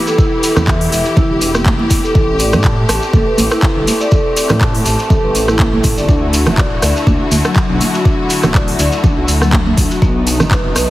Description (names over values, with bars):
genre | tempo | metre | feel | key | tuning
afro house | 122 BPM | 4/4 | swing 54% on 16ths | unclear | A4 = 438 Hz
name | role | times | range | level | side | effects
rich studio string section | sustained chords | 0.0-10.9 s | D3 to G4 | -21 LUFS | left 1 dB | sidechain pumping
marimba with medium mallets | arpeggios | 0.1-10.9 s | F#3 to A5 | -17 LUFS | equal | sidechain pumping, digital delay
shekere | percussion | 0.1-10.9 s | none | -24 LUFS | right 1 dB | none
electronic kick drum | drums | 0.2-10.6 s | none | -14 LUFS | equal | overdrive
afro-pop drum kit | drums | 0.4-10.9 s | handclaps, hi-hat, rim click | -20 LUFS | equal | none
dark detuned saw bass | bass | 0.6-10.9 s | D1 to A2 | -18 LUFS | equal | sidechain pumping
congas | percussion | 0.6-10.5 s | none | -18 LUFS | right 2 dB | none
room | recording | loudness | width
light reverb, studio reverb | heavily compressed radio sound | -11 LUFS | side -16 dB against mid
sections
0.0-10.9 A section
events
none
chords
0.0 Em; 2.2 Am7; 6.1 D; 10.0 B7